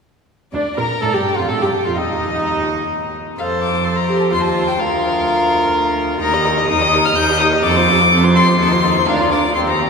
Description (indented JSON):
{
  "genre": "quick classical-period movement for string quartet",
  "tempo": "126 BPM",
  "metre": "3/4",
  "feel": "rubato",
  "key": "Bb major",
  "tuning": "A4 = 439 Hz",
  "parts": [
    { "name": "warm violin", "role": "melody", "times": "0.5-9.9 s", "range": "D5 to G6", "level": "-18 LUFS", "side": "left 3 dB", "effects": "none" },
    { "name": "warm violin", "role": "second line", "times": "0.5-9.9 s", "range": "D4 to Eb5", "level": "-21 LUFS", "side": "left 2 dB", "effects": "none" },
    { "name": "warm viola", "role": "accompaniment", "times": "0.5-9.9 s", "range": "C4 to Bb4", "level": "-21 LUFS", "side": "right 2 dB", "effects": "none" },
    { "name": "rich cello", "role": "bass", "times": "0.5-9.9 s", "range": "D2 to Bb2", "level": "-19 LUFS", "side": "right 2 dB", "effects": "none" }
  ],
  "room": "wet cathedral reverb, RT60 4.0 s",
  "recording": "recorded in a church or concert hall, small room ambience",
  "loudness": "-14 LUFS",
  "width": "side -5 dB against mid",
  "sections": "0.5-9.9 A section",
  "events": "none",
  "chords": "0.5 Bb/D; 1.5 Fadd9; 2.0 N.C.; 3.4 F; 4.3 F7/Eb; 4.8 Bb/D; 6.2 Eb; 7.6 F; 8.6 F7/Eb; 9.1 Bb/D",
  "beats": "| 0.53 1.02 1.49 | 1.97 2.45 2.91 | 3.38 3.85 4.32 | 4.80 5.27 5.74 | 6.21 6.69 7.16 | 7.64 8.12 8.60 | 9.08 9.56"
}